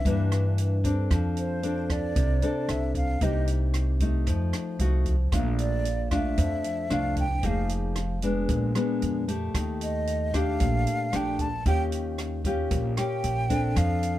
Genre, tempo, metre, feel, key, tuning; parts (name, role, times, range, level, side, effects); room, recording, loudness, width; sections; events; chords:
bossa nova; 114 BPM; 4/4; straight; F major; A4 = 440 Hz
breathy concert flute; melody; 0.0-14.2 s; C5 to A5; -31 LUFS; right 2 dB
nylon-string guitar; accompaniment; 0.0-14.2 s; F2 to A4; -28 LUFS; left 2 dB
upright bass; bass; 0.1-14.2 s; F1 to G2; -27 LUFS; right 1 dB
compact cocktail drum kit; drums; 0.1-14.1 s; hi-hat, kick drum, rim click; -32 LUFS; right 1 dB
little or no reverb; close, detailed microphones; -24 LUFS; side -14 dB against mid
0.0-1.1 A section; 1.1-14.2 B section
flute solo 1.1-14.2
0.0 C9; 1.1 F6; 3.2 Cm7; 4.3 F7b9; 5.3 Bbmaj7; 7.4 Fm7; 8.5 Bb7b9; 9.5 Ebmaj9#11; 11.7 Eb9